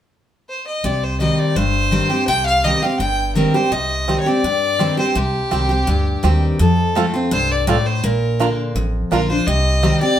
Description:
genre	bluegrass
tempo	167 BPM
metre	4/4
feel	straight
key	C dorian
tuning	A4 = 439 Hz
part	clear fiddle	melody	0.5-10.2 s	G4 to G5	-20 LUFS	left 1 dB	none
part	picked steel-string acoustic guitar	accompaniment	0.8-10.2 s	F2 to G4	-19 LUFS	left 1 dB	none
part	upright bass	bass	0.8-9.9 s	G1 to G2	-21 LUFS	equal	none
part	bluegrass banjo	melody	4.1-9.9 s	C4 to Bb4	-22 LUFS	right 5 dB	none
room	wet studio reverb, RT60 0.6 s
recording	band playing live in one room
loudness	-15 LUFS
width	side -10 dB against mid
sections	0.8-3.7 A section; 3.7-10.2 B section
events	none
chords	0.0 N.C.; 0.8 Cm; 6.6 F; 8.0 Bb; 9.5 Cm

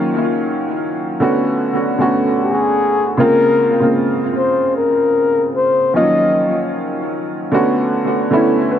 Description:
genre	R&B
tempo	76 BPM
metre	4/4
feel	swing 59% on 16ths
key	unclear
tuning	A4 = 440 Hz
part	warm upright piano	accompaniment	0.0-8.8 s	Db3 to B4	-16 LUFS	right 1 dB	tape echo
part	breathy flugelhorn	melody	2.4-6.7 s	Ab4 to Eb5	-15 LUFS	left 3 dB	tape echo
room	light reverb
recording	echo-heavy mix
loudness	-13 LUFS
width	side -9 dB against mid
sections	0.0-8.8 A section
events	none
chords	0.0 Ebm9; 1.2 Bm9; 3.2 Bbm9; 5.9 Ebm9; 7.5 Bm9

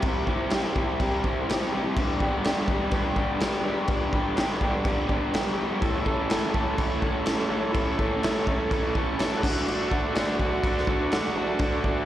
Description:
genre	garage rock duo or trio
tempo	124 BPM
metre	4/4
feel	straight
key	A mixolydian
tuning	A4 = 440 Hz
part	raw garage guitar	riff	0.0-12.1 s	G2 to A4	-26 LUFS	equal	overdrive, slapback echo
part	raw garage drum kit	drums	0.0-12.0 s	crash cymbal, kick drum, snare drum	-27 LUFS	equal	none
part	combo organ	sustained chords	5.8-12.1 s	E4 to C#6	-32 LUFS	right 1 dB	spring reverb
room	little or no reverb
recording	live gig heard through the venue's PA, recital hall reverb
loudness	-23 LUFS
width	side -12 dB against mid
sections	0.0-12.1 A section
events	transistor combo organ fill 8.7-9.7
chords	0.0 C; 2.0 G; 5.8 A; 9.4 D

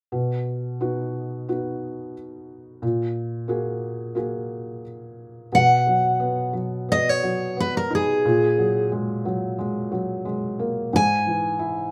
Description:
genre	acoustic folk-pop ballad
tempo	89 BPM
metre	4/4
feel	straight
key	B major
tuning	A4 = 440 Hz
part	felt-muted upright piano	accompaniment	0.1-11.9 s	G#2 to G#4	-28 LUFS	equal	none
part	picked steel-string acoustic guitar	melody	5.5-11.9 s	G#4 to G#5	-22 LUFS	equal	none
room	moderate studio ambience, RT60 0.5 s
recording	none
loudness	-24 LUFS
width	mono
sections	0.1-5.5 A section; 5.5-11.9 B section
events	none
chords	0.1 B; 2.8 F#add9/A#; 5.5 B; 8.2 F#add9/A#; 10.9 C#m/G# (rootless)

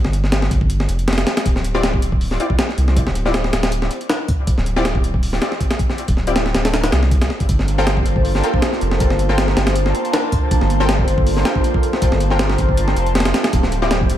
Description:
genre	drum and bass, jungle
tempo	159 BPM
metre	4/4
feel	swing 54% on 16ths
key	G minor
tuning	A4 = 440 Hz
part	saturated sub bass	bass	0.0-14.2 s	D1 to C2	-19 LUFS	equal	none
part	breakbeat sampler-style drum kit	drums	0.0-14.2 s	hi-hat, kick drum, snare drum	-18 LUFS	equal	studio reverb
part	orchestra-hit-like synth stab	stabs	1.7-13.9 s	C4 to G5	-24 LUFS	left 2 dB	built-in reverb, dub echo
part	airy breathy pad	sustained chords	7.6-14.2 s	F3 to A5	-21 LUFS	equal	chorus, phaser
room	light reverb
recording	echo-heavy mix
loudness	-15 LUFS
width	side -11 dB against mid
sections	0.0-14.2 A section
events	none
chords	0.0 Fsus2; 1.5 Dm11; 7.5 Gm11; 13.5 Dm11

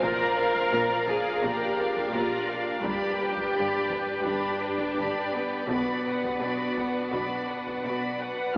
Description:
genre	cinematic, epic orchestral film score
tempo	85 BPM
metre	4/4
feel	straight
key	unclear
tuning	A4 = 442 Hz
part	rich symphonic violin section	melody	0.0-8.6 s	F5 to B5	-33 LUFS	equal	none
part	rich symphonic violin section	second line	0.0-8.6 s	F#4 to D5	-33 LUFS	equal	none
part	rich chamber viola section	accompaniment	0.0-8.2 s	B3 to Bb4	-32 LUFS	equal	none
part	warm French horn section	sustained chords	0.0-8.2 s	B3 to Bb4	-30 LUFS	equal	none
part	warm symphonic string section	sustained chords	0.0-8.6 s	D4 to F5	-33 LUFS	equal	none
part	rich symphonic cello section	bass	0.0-8.5 s	G2 to B2	-34 LUFS	equal	none
part	warm symphonic double bass section	bass	0.0-8.5 s	G1 to B1	-45 LUFS	equal	none
part	taiko ensemble	drums	0.0-8.3 s	none	-43 LUFS	equal	none
room	wet cathedral reverb, RT60 6.1 s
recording	recorded in a church or concert hall, AM radio sound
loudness	-25 LUFS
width	side -29 dB against mid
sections	0.0-8.6 A section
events	none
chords	0.0 Bb; 2.8 G; 5.7 Bm

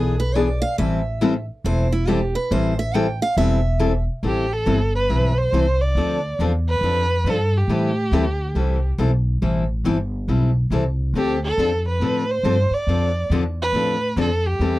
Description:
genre	acoustic string swing (jazz manouche)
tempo	139 BPM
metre	4/4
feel	swing 62% on 8ths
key	A minor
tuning	A4 = 440 Hz
part	picked steel-string acoustic guitar	second line	0.0-4.0 s	E4 to G5	-25 LUFS	right 3 dB	none
part	picked steel-string acoustic guitar	accompaniment	0.0-14.8 s	D3 to A4	-22 LUFS	left 3 dB	none
part	upright bass	bass	0.0-14.8 s	E1 to A2	-21 LUFS	equal	none
part	warm violin	melody	4.3-14.8 s	G4 to D5	-23 LUFS	right 1 dB	none
room	little or no reverb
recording	dry, close 1970s-style studio recording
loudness	-18 LUFS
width	side -17 dB against mid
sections	0.0-4.2 A section; 4.2-14.8 B section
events	steel-string acoustic guitar solo 0.0-4.2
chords	0.0 E7; 0.8 Am7; 4.2 Am9; 6.0 Dm9; 7.7 Am9; 11.1 Dm9

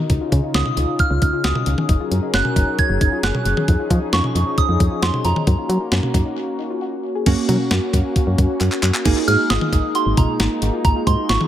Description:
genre	synth-pop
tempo	134 BPM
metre	4/4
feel	straight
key	unclear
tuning	A4 = 442 Hz
part	warm analog pad	sustained chords	0.0-11.5 s	Db3 to Bb4	-25 LUFS	left 2 dB	wide subtle chorus
part	soft round pluck	arpeggios	0.1-11.4 s	Db4 to Ab4	-29 LUFS	left 5 dB	chorus, tape echo
part	solid FM bass	bass	0.1-11.4 s	Gb1 to Gb3	-20 LUFS	equal	none
part	clean 12-bit digital drum machine	drums	0.1-11.5 s	crash cymbal, handclaps, hi-hat, kick drum, snare drum, toms	-20 LUFS	equal	tape echo
part	soft synth bell	melody	0.5-11.5 s	Bb5 to Ab6	-23 LUFS	right 3 dB	chorus, tape echo
part	funky polysynth comp	accompaniment	7.3-11.5 s	Bb3 to Ab4	-23 LUFS	right 6 dB	chorus, tape echo
room	light reverb, digital ambience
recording	echo-heavy mix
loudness	-16 LUFS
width	side -11 dB against mid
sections	0.0-7.3 A section; 7.3-9.1 B section; 9.1-11.5 C section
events	break 6.4-7.3; drum fill 8.6-9.1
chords	0.1 Dbadd9; 1.9 Gbadd9; 3.7 Dbadd9/F; 5.5 Gb; 9.1 Absus2

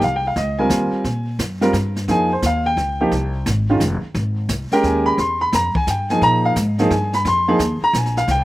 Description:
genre	jazz, small-group swing and bop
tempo	174 BPM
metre	3/4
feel	swing 65% on 8ths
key	F minor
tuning	A4 = 444 Hz
part	warm baby grand piano	accompaniment	0.0-8.4 s	Eb3 to C6	-17 LUFS	equal	none
part	upright bass	bass	0.0-8.4 s	F1 to Bb2	-22 LUFS	equal	none
part	jazz brush drum kit	drums	0.0-8.4 s	brushed snare drum, hi-hat, kick drum, snare drum	-26 LUFS	equal	none
room	little or no reverb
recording	recorded outdoors, with no room sound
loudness	-16 LUFS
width	side -17 dB against mid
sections	0.0-8.4 A section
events	none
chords	0.0 Fm9; 1.1 Bbm7; 3.1 Fm9; 5.2 Abmaj13; 6.2 Bb5; 7.2 Fm7

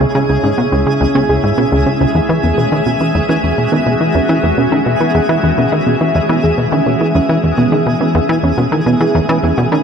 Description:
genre	ambient, sequencer-driven space music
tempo	105 BPM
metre	4/4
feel	straight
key	unclear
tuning	A4 = 440 Hz
part	evolving wavetable pad	sustained chords	0.0-9.8 s	C#3 to E5	-17 LUFS	equal	chorus, built-in reverb
part	soft round pluck	arpeggios	0.0-9.8 s	B3 to G#4	-19 LUFS	right 3 dB	chorus, auto-pan, tape echo
part	plucky analog bass	riff	0.0-9.8 s	C#2 to E3	-14 LUFS	equal	tape echo
part	twinkling granular texture	texture	0.0-9.8 s	G#3 to G#4	-21 LUFS	left 1 dB	built-in reverb
room	wet huge ambient reverb, RT60 7.8 s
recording	none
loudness	-11 LUFS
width	side -6 dB against mid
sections	0.0-9.8 A section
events	filter sweep on synth arpeggio sound 0.0-9.8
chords	0.0 C#m; 2.1 E6

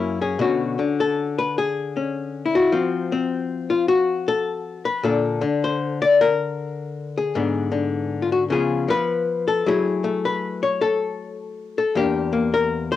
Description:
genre	solo jazz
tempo	104 BPM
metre	4/4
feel	swing 67% on 8ths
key	unclear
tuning	A4 = 438 Hz
part	archtop guitar, miked and amplified	solo	0.0-13.0 s	E2 to D5	-20 LUFS	left 4 dB	cassette tape
room	moderate studio reverb, RT60 0.6 s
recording	home recording on cassette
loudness	-20 LUFS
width	side -12 dB against mid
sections	0.4-13.0 A section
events	none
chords	0.4 Bmadd9; 2.7 F; 5.0 Bbmaj7; 7.3 G#dim; 8.5 C#7; 9.6 F#m9; 11.9 Em7b5

